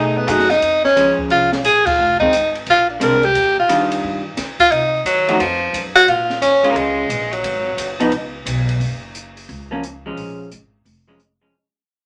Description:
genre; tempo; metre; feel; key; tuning
jazz, small-group swing and bop; 176 BPM; 4/4; swing 65% on 8ths; Bb minor; A4 = 440 Hz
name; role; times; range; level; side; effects
clear tenor saxophone; melody; 0.0-6.4 s; B3 to Bb4; -16 LUFS; equal; none
vintage hollow-body jazz guitar; accompaniment; 0.0-11.5 s; Eb3 to G#4; -22 LUFS; equal; none
upright bass; bass; 0.0-11.5 s; F1 to Eb3; -30 LUFS; equal; none
open jazz drum kit; drums; 0.3-11.3 s; crash cymbal, hi-hat, kick drum, ride cymbal, snare drum; -30 LUFS; equal; none
edgy tenor saxophone; second line; 5.1-8.0 s; F3 to Db4; -20 LUFS; equal; none
room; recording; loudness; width
wet small room reverb, RT60 0.5 s; none; -16 LUFS; mono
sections
0.0-8.8 A section; 8.8-11.5 B section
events
band accent 1.8; fade-out 8.8-11.5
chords
0.0 B6; 0.6 Bbm7; 2.0 Fm7; 2.7 Bb9; 3.3 Ebmaj9; 4.7 Cdim; 5.4 N.C.; 6.1 Bbm7; 7.4 Abm7; 8.1 Bsus2; 8.8 Gbmaj7(no3); 10.2 Bbm7

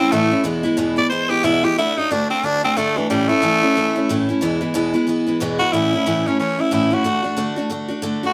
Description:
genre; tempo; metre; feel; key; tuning
rock; 182 BPM; 4/4; swing 59% on 8ths; A major; A4 = 440 Hz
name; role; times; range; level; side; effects
raspy tenor saxophone; melody; 0.0-8.3 s; E3 to D5; -21 LUFS; equal; none
picked steel-string acoustic guitar; accompaniment; 0.0-8.3 s; E2 to F#4; -21 LUFS; equal; none
room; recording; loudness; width
moderate stone room reverb, RT60 1.0 s; band playing live in one room; -19 LUFS; mono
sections
0.0-5.7 A section; 5.7-8.3 B section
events
tenor saxophone solo 0.0-5.7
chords
0.5 E; 1.8 D; 3.1 A; 4.4 E; 5.7 A; 7.1 D

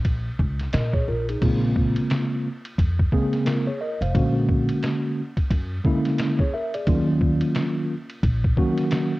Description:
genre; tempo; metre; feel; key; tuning
hip hop, jazz-hop; 88 BPM; 4/4; swing 60% on 16ths; Bb minor; A4 = 439 Hz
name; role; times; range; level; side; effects
upright bass; bass; 0.0-8.5 s; F1 to Bb2; -24 LUFS; equal; none
lo-fi sampler-style drum kit; drums; 0.0-9.1 s; crash cymbal, hi-hat, kick drum, ride cymbal, snare drum; -25 LUFS; equal; vintage 12-bit sampler grit, cassette tape
mellow tine electric piano; accompaniment; 0.7-9.1 s; Db3 to F5; -23 LUFS; equal; medium stereo tremolo
room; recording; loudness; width
light reverb, digital ambience; home recording on cassette; -20 LUFS; side -19 dB against mid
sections
0.0-1.4 A section; 1.4-9.2 B section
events
none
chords
0.0 Bbm7; 1.4 Bbm9; 4.1 Bb7alt; 6.9 Ebm9

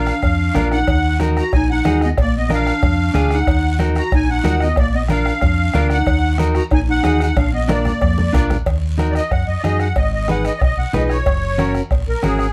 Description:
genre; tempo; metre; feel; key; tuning
latin, cumbia; 185 BPM; 4/4; straight; Eb harmonic minor, Eb minor from 8.7 s; A4 = 438 Hz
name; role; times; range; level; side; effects
musette accordion; melody; 0.0-12.5 s; Ab4 to Bb5; -25 LUFS; equal; slapback echo
mellow clarinet; second line; 0.0-8.5 s; Bb3 to Gb4; -25 LUFS; equal; none
clean electric guitar; accompaniment; 0.0-12.5 s; Db4 to Cb5; -24 LUFS; equal; none
fingered electric bass; bass; 0.0-12.5 s; Gb1 to Gb2; -22 LUFS; equal; none
bombo; percussion; 0.1-12.5 s; none; -23 LUFS; equal; none
guiro; percussion; 0.1-12.5 s; none; -41 LUFS; equal; none
congas; percussion; 0.2-12.4 s; none; -27 LUFS; equal; none
cowbell and timbales; percussion; 0.2-12.4 s; none; -30 LUFS; equal; none
room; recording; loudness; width
light reverb; dark, warm production; -17 LUFS; mono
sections
0.0-8.7 A section; 8.7-12.5 B section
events
drum fill 7.4-8.7; accordion solo 8.7-12.5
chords
0.0 Bb; 0.9 Ebm; 2.2 Bb7; 3.5 Ebm; 4.8 Bb; 6.1 Ebm; 7.4 Bb; 8.7 Ebm; 10.0 Abm; 11.3 Gb

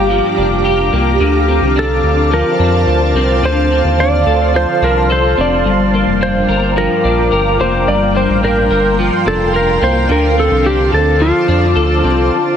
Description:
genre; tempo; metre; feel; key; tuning
dream pop; 108 BPM; 4/4; straight; G minor; A4 = 440 Hz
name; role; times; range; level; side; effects
clean lap steel guitar; melody; 0.0-12.6 s; F4 to D5; -16 LUFS; equal; shimmer reverb, digital delay
shimmering ambient pad; sustained chords; 0.0-12.3 s; G4 to D6; -16 LUFS; right 2 dB; chorus, built-in reverb, phaser, shimmer reverb
electric guitar at the edge of break-up; arpeggios; 0.0-12.6 s; G2 to Bb4; -17 LUFS; left 3 dB; ensemble chorus, shimmer reverb, digital delay
round analog bass; bass; 0.0-12.3 s; F1 to F2; -16 LUFS; right 1 dB; none
room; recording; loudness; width
light reverb, small room ambience; heavily compressed radio sound; -11 LUFS; side -8 dB against mid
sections
0.0-12.6 A section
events
stop 12.3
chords
0.0 Gm7; 1.2 Dm7; 5.7 Gm7; 10.1 Dm7

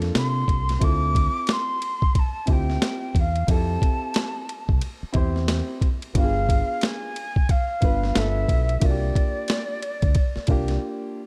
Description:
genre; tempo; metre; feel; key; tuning
hip hop, jazz-hop; 90 BPM; 4/4; swing 62% on 16ths; unclear; A4 = 435 Hz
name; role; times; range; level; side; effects
dark upright piano; accompaniment; 0.0-11.2 s; Bb3 to C5; -33 LUFS; equal; none
deep dub fingered electric bass; bass; 0.0-10.8 s; G1 to C3; -27 LUFS; equal; none
boom bap sampler-style drum kit; drums; 0.0-10.8 s; hi-hat, kick drum, ride cymbal, snare drum; -25 LUFS; equal; none
breathy mellow silver concert flute; melody; 0.2-10.8 s; D5 to D6; -30 LUFS; equal; slapback echo
room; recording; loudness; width
little or no reverb; dark, warm production; -23 LUFS; mono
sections
0.0-11.3 A section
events
break 10.8-11.3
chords
0.0 C9sus4; 0.8 Dm9; 3.5 Fmaj9 (rootless); 6.1 G7b9; 8.1 G7; 8.8 C9sus4

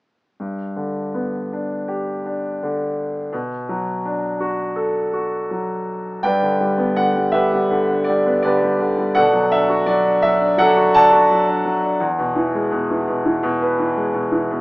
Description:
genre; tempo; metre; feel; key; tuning
classical, lyrical solo piano; 83 BPM; 4/4; rubato; G major; A4 = 441 Hz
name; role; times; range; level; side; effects
bright concert grand piano; solo; 0.4-14.6 s; E2 to A5; -16 LUFS; equal; none
room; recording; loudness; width
moderate studio reverb, RT60 0.5 s; small speaker sound; -16 LUFS; side -22 dB against mid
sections
0.4-6.2 A section; 6.2-14.6 B section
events
none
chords
0.4 G; 3.3 Bm7; 6.2 G; 9.2 Bm7; 12.0 E

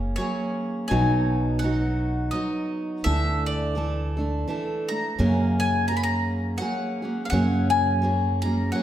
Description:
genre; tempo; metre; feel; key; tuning
acoustic folk duo or small band; 84 BPM; 3/4; swing 58% on 8ths; F# major; A4 = 440 Hz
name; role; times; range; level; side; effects
bowl-back mandolin; melody; 0.0-8.8 s; C#5 to B5; -28 LUFS; left 4 dB; none
picked steel-string acoustic guitar; accompaniment; 0.0-8.8 s; F#2 to A4; -25 LUFS; right 2 dB; none
upright bass; bass; 0.0-8.7 s; F#1 to F#2; -26 LUFS; equal; none
room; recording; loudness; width
wet recital hall reverb, RT60 1.4 s; none; -22 LUFS; side -11 dB against mid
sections
0.0-8.8 A section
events
none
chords
0.0 F#add9; 0.9 B; 3.0 Dsus2; 5.2 F#add9

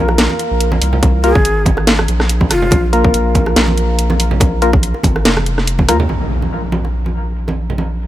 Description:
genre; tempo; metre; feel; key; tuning
deep dubstep; 142 BPM; 4/4; swing 55% on 16ths, half-time; unclear; A4 = 440 Hz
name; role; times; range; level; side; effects
percussive organ stab; stabs; 0.0-6.0 s; Bb3 to Bb4; -19 LUFS; left 2 dB; analog chorus, dub echo
saturated sub bass; bass; 0.0-8.1 s; F1 to Eb2; -16 LUFS; equal; none
garage drum kit; drums; 0.1-8.1 s; crash cymbal, hi-hat, rim click, snare drum; -16 LUFS; equal; low-pass filter on hats, low-pass filter on snare, low-pass filter on cymbals
bongos and congas; percussion; 0.1-7.9 s; none; -21 LUFS; right 3 dB; dub echo
electronic kick drum; drums; 1.0-5.9 s; none; -14 LUFS; equal; none
breathy mellow shakuhachi; melody; 1.2-2.8 s; F4 to Ab4; -21 LUFS; left 1 dB; dub echo
impact; sound effects; 6.1-7.8 s; none; -24 LUFS; equal; none
room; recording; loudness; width
little or no reverb; none; -12 LUFS; side -13 dB against mid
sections
0.0-6.1 A section; 6.1-8.1 B section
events
drop 0.0-6.1; impact 6.1-7.8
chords
0.0 Bb5

